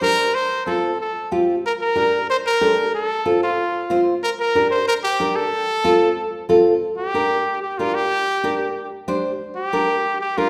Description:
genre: latin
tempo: 185 BPM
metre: 4/4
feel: straight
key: G minor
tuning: A4 = 440 Hz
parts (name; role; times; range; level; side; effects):
- clear trumpet; melody; 0.0-10.5 s; F4 to C5; -22 LUFS; equal; none
- nylon-string guitar; accompaniment; 0.0-10.5 s; C4 to C5; -22 LUFS; equal; none
room: wet recital hall reverb, RT60 1.4 s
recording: recorded in a church or concert hall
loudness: -20 LUFS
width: mono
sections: 0.0-6.8 A section; 6.8-10.5 B section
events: trumpet solo 6.8-10.5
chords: 0.3 F; 1.6 Gm; 2.9 F; 4.2 Gm; 5.5 F; 6.8 Gm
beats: 0.02 | 0.34 0.67 0.99 1.31 | 1.64 1.96 2.29 2.61 | 2.93 3.26 3.58 3.90 | 4.23 4.55 4.87 5.20 | 5.52 5.84 6.17 6.49 | 6.82 7.14 7.46 7.79 | 8.11 8.44 8.76 9.09 | 9.41 9.73 10.06 10.38

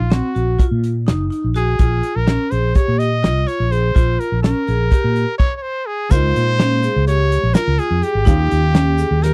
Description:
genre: progressive instrumental, band music in an uneven meter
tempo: 250 BPM (eighths)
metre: 9/8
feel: straight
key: unclear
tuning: A4 = 440 Hz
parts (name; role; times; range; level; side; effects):
- bright trumpet; melody; 0.0-9.3 s; F4 to Eb5; -24 LUFS; equal; none
- mellow fretless electric bass; bass; 0.0-9.3 s; Gb1 to Bb2; -20 LUFS; equal; analog chorus
- vibraphone with hard mallets; arpeggios; 0.1-9.3 s; C4 to Ab4; -25 LUFS; equal; none
- warm soul drum kit; drums; 0.1-9.3 s; crash cymbal, hi-hat, kick drum, snare drum; -17 LUFS; equal; none
- hollow-body jazz guitar; accompaniment; 6.1-9.3 s; G3 to F4; -30 LUFS; equal; double-tracked
- tube shaker; percussion; 6.1-9.2 s; none; -43 LUFS; equal; none
room: little or no reverb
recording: none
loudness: -17 LUFS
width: mono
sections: 0.0-6.1 A section; 6.1-9.3 B section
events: stop 5.4-6.1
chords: 0.0 Gbmaj13; 1.8 Dbmaj7/Bb; 4.0 Bb5; 6.1 Db6; 8.3 Eb7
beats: 0.11 0.35 0.59 0.83 1.07 1.31 1.55 | 1.79 2.03 2.27 2.51 2.75 2.99 3.23 3.48 3.71 | 3.96 4.20 4.44 4.68 4.92 5.16 5.40 5.63 5.88 | 6.12 6.35 6.59 6.83 7.07 7.31 7.55 7.79 8.03 | 8.27 8.51 8.75 8.99 9.23

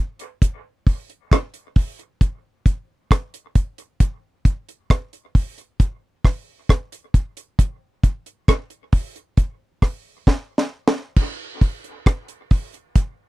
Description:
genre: reggae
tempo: 67 BPM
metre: 4/4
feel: straight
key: none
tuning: none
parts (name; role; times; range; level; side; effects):
- deep reggae drum kit; drums; 0.2-13.2 s; crash cymbal, hi-hat, kick drum, rim click, snare drum; -15 LUFS; equal; none
room: light reverb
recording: dry, close 1970s-style studio recording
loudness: -20 LUFS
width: side -19 dB against mid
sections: 0.0-11.2 A section; 11.2-13.3 B section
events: drum fill 10.3-11.2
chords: none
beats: | 0.42 1.31 2.21 3.11 | 4.00 4.90 5.79 6.69 | 7.59 8.48 9.38 10.28 | 11.17 12.07 12.96

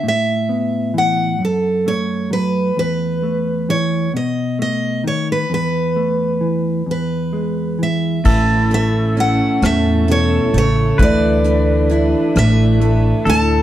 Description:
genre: acoustic folk-pop ballad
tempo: 44 BPM (dotted quarters)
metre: 6/8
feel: straight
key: A major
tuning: A4 = 442 Hz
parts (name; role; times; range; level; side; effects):
- picked steel-string acoustic guitar; melody; 0.0-13.6 s; A4 to A5; -20 LUFS; equal; none
- mellow electric guitar; accompaniment; 0.0-13.6 s; E2 to E4; -19 LUFS; equal; none
- warm chamber string section; sustained chords; 8.2-13.6 s; A3 to E4; -24 LUFS; equal; none
- picked steel-string acoustic guitar; arpeggios; 8.2-13.6 s; E3 to A4; -21 LUFS; right 2 dB; none
- pedal steel guitar; second line; 8.3-13.6 s; A4 to B4; -24 LUFS; right 1 dB; none
- upright bass; bass; 8.3-13.6 s; A1 to E2; -16 LUFS; equal; none
- soft brush drum kit; drums; 8.3-13.5 s; crash cymbal, hi-hat, kick drum, rim click; -18 LUFS; equal; none
room: light reverb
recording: dark, warm production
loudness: -14 LUFS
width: side -12 dB against mid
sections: 0.0-8.2 A section; 8.2-13.6 B section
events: none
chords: 0.0 Asus2; 1.4 F#m; 2.8 Esus4; 4.1 B7; 5.5 Esus4; 6.9 E; 8.2 A; 11.0 Dsus2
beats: | 0.04 1.40 | 2.77 4.13 | 5.50 6.87 | 8.25 9.62 | 10.98 12.35

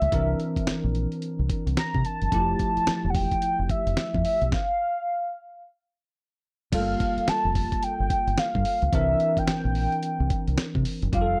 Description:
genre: R&B, new jack swing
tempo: 109 BPM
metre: 4/4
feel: swing 62% on 16ths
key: unclear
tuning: A4 = 440 Hz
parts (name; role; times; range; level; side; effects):
- warm velvety synth lead; melody; 0.0-11.4 s; E5 to Bb5; -29 LUFS; equal; chorus, slapback echo
- bell-like tine electric piano; accompaniment; 0.0-11.4 s; E3 to Bb4; -33 LUFS; equal; ensemble chorus
- deep dub fingered electric bass; bass; 0.0-11.3 s; E1 to C3; -29 LUFS; equal; none
- dusty soul sampler-style drum kit; drums; 0.0-11.3 s; crash cymbal, hi-hat, kick drum, snare drum; -31 LUFS; equal; none
room: light reverb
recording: dry, close 1970s-style studio recording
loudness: -25 LUFS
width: mono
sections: 0.0-6.7 A section; 6.7-11.4 B section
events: stop 4.5-6.7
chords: 0.1 C9; 2.3 Fmaj9; 4.5 N.C.; 6.7 Gm9; 8.9 C9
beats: | 0.12 0.67 1.22 1.77 | 2.32 2.87 3.42 3.97 | 4.52 5.07 5.62 6.17 | 6.72 7.28 7.83 8.38 | 8.93 9.48 10.03 10.58 | 11.13

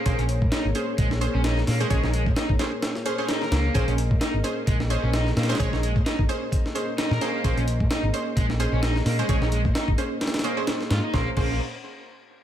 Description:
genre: breakbeat, breaks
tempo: 130 BPM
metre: 4/4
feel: swing 56% on 16ths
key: Bb minor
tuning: A4 = 441 Hz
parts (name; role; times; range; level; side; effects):
- dark analog pad; sustained chords; 0.0-11.4 s; Bb3 to Eb5; -32 LUFS; left 1 dB; chorus, sidechain pumping
- overdriven semi-hollow guitar; riff; 0.0-11.6 s; Ab3 to Bb4; -30 LUFS; equal; digital delay
- orchestra-hit-like synth stab; stabs; 0.1-11.5 s; Db4 to Db5; -30 LUFS; right 2 dB; built-in reverb, digital delay
- hollow-body short-scale picked electric bass; bass; 0.1-11.6 s; Ab1 to Bb2; -24 LUFS; equal; tube saturation
- breakbeat sampler-style drum kit; drums; 0.1-11.5 s; crash cymbal, hi-hat, kick drum, snare drum; -26 LUFS; equal; studio reverb
room: little or no reverb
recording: none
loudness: -21 LUFS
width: side -11 dB against mid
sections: 0.0-11.1 A section; 11.1-12.4 B section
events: drop 0.0-11.1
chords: 0.0 Bbm9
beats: | 0.06 0.52 0.98 1.44 | 1.91 2.37 2.83 3.29 | 3.75 4.21 4.67 5.14 | 5.60 6.06 6.52 6.98 | 7.44 7.91 8.37 8.83 | 9.29 9.75 10.21 10.68 | 11.14

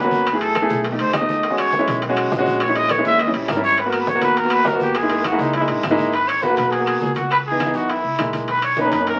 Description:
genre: Afro-Cuban jazz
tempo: 204 BPM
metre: 4/4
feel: straight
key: G# minor from 6.1 s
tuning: A4 = 440 Hz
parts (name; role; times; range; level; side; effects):
- growling trumpet; melody; 0.0-9.2 s; D#4 to E5; -22 LUFS; equal; none
- warm upright piano; accompaniment; 0.0-9.2 s; E3 to G#4; -23 LUFS; equal; none
- upright bass; bass; 0.0-9.2 s; G#1 to F#2; -33 LUFS; equal; none
- congas; percussion; 0.1-9.2 s; none; -36 LUFS; equal; none
- guiro; percussion; 0.1-9.2 s; none; -42 LUFS; equal; none
- bongos; percussion; 0.3-9.2 s; none; -34 LUFS; equal; none
- claves; percussion; 0.3-8.8 s; none; -40 LUFS; equal; none
- timbales; percussion; 0.3-9.2 s; none; -30 LUFS; equal; none
room: wet club reverb, RT60 0.7 s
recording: very old 78 rpm record, vinyl crackle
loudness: -19 LUFS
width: mono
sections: 0.0-6.1 A section; 6.1-9.2 B section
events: trumpet solo 0.0-6.1; drum fill 5.0-6.1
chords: 0.3 F#m7; 0.8 B7alt; 1.4 E69; 2.6 A#m7b5; 3.2 D#7b9; 3.8 G#m9; 5.0 F#13; 6.1 G#m7; 7.3 C#m7; 7.9 F#7; 8.5 Bmaj7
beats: | 0.26 0.55 0.84 1.14 | 1.43 1.73 2.02 2.31 | 2.61 2.90 3.19 3.49 | 3.78 4.07 4.37 4.66 | 4.95 5.25 5.54 5.83 | 6.13 6.42 6.72 7.01 | 7.30 7.60 7.89 8.19 | 8.48 8.77 9.07

